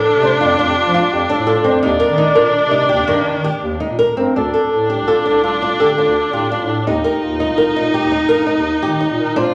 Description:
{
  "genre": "contemporary instrumental, chamber music in an uneven meter",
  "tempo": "168 BPM",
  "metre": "7/4",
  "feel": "straight",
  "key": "D phrygian",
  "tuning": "A4 = 440 Hz",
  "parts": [
    { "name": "breathy flugelhorn", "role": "melody", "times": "0.0-9.5 s", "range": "F4 to D5", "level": "-23 LUFS", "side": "equal", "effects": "none" },
    { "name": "clear viola", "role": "second line", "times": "0.0-9.5 s", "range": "D4 to F4", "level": "-21 LUFS", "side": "equal", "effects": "none" },
    { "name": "flamenco guitar", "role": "arpeggios", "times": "0.0-9.5 s", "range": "Eb3 to Bb4", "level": "-19 LUFS", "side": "equal", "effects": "none" },
    { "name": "mellow bass clarinet", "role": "bass", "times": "0.1-9.5 s", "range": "C2 to F3", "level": "-26 LUFS", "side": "equal", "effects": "none" }
  ],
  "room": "moderate scoring stage reverb, RT60 1.5 s",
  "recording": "none",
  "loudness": "-16 LUFS",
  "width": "mono",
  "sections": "0.0-4.4 A section; 4.4-9.5 B section",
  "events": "none",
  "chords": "0.0 Dm/F; 1.8 Ebmaj7; 4.4 Dm; 6.9 Ebadd9",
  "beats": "0.05 0.41 0.76 1.12 1.47 | 1.83 2.18 2.54 2.90 3.26 3.62 3.99 | 4.36 4.72 5.08 5.44 5.80 6.16 6.51 | 6.87 7.23 7.58 7.94 8.29 8.65 9.01 | 9.36"
}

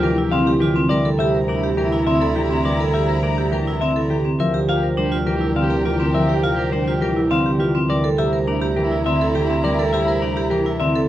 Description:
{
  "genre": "classical, minimalist pattern music",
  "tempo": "103 BPM",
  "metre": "3/4",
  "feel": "straight",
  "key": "unclear",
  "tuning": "A4 = 440 Hz",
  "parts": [
    { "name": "clean electric guitar", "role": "melody", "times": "0.0-11.0 s", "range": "G4 to F5", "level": "-26 LUFS", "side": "left 6 dB", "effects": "none" },
    { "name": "warm soprano saxophone", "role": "second line", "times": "0.0-11.1 s", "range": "E4 to G4", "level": "-30 LUFS", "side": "right 3 dB", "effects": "none" },
    { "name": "concert harp", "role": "accompaniment", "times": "0.0-11.1 s", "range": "C3 to A3", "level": "-21 LUFS", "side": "left 1 dB", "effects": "none" },
    { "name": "rich chamber string section", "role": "sustained chords", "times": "0.0-11.1 s", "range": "E4 to Bb5", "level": "-30 LUFS", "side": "left 2 dB", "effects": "none" },
    { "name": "vibraphone with hard mallets", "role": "arpeggios", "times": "0.0-11.1 s", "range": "C4 to Bb4", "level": "-22 LUFS", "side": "right 3 dB", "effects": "none" },
    { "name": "warm double bass", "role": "bass", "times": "0.0-11.1 s", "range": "D2", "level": "-25 LUFS", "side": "right 1 dB", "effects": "none" }
  ],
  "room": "moderate large studio reverb, RT60 1.2 s",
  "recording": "worn, warbling old tape, cassette tape, warbly pitch drift, nothing above 10.3 kHz",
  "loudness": "-17 LUFS",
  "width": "side -13 dB against mid",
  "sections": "0.0-11.1 A section",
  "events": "none",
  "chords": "0.0 Bb69/D; 0.9 C13/D; 4.4 Bb69/D; 7.9 C13/D",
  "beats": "0.32 | 0.90 1.48 2.06 | 2.65 3.23 3.81 | 4.39 4.98 5.56 | 6.14 6.72 7.31 | 7.89 8.47 9.05 | 9.64 10.22 10.80"
}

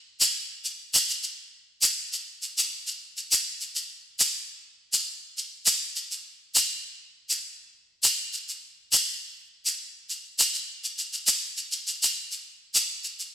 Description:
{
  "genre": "west african traditional",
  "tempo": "102 BPM",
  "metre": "4/4",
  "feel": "straight",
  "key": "none",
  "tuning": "none",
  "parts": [
    { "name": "tube shaker", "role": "percussion", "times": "0.2-13.3 s", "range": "none", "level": "-23 LUFS", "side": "equal", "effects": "none" }
  ],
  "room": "wet recital hall reverb, RT60 1.6 s",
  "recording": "none",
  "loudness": "-24 LUFS",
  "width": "side -10 dB against mid",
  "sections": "0.0-12.8 A section",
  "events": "none",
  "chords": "none",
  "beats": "0.36 | 0.95 1.54 2.13 2.72 | 3.32 3.91 4.50 5.09 | 5.68 6.27 6.86 7.45 | 8.04 8.63 9.22 9.81 | 10.39 10.98 11.57 12.16 | 12.75"
}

